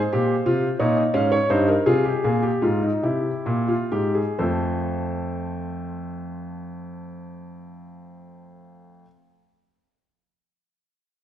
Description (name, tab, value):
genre	classical, baroque-style 3-part fugue for grand piano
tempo	41-61 BPM (dotted quarters)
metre	6/8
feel	straight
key	unclear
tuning	A4 = 441 Hz
part	dark concert grand piano	solo	0.0-9.1 s	F2 to F5	-21 LUFS	equal	none
room	wet concert hall reverb, RT60 1.7 s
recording	none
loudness	-20 LUFS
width	side -11 dB against mid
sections	0.0-4.4 A section; 4.4-10.2 B section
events	slowing down 0.0-4.4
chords	0.0 N.C.; 0.8 Bbm; 1.9 Fm; 3.0 C7; 4.4 F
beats	0.79 | 1.86 3.04 | 4.39 5.85 | 7.30 8.75